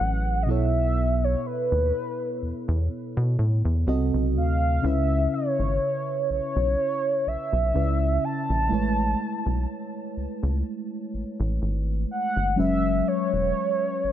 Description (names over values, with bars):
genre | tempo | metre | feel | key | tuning
contemporary R&B | 62 BPM | 4/4 | swing 54% on 16ths | C# minor | A4 = 438 Hz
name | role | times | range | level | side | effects
mellow horn-like synth lead | melody | 0.0-14.1 s | B4 to A5 | -26 LUFS | right 1 dB | chorus, ping-pong delay
mellow FM electric piano | accompaniment | 0.0-14.1 s | B2 to E5 | -28 LUFS | equal | chorus, phaser
rubbery square bass | bass | 0.0-14.1 s | E1 to B2 | -24 LUFS | equal | none
room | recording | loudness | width
light reverb | none | -22 LUFS | side -11 dB against mid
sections
0.0-4.8 A section; 4.8-14.1 B section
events
none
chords
0.5 B7sus4; 3.9 Cdim7; 4.8 C#m7; 8.7 Amaj9; 12.6 F#7sus4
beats
0.00 | 0.97 1.94 2.91 3.87 | 4.84 5.81 6.78 7.75 | 8.71 9.68 10.65 11.62 | 12.58 13.55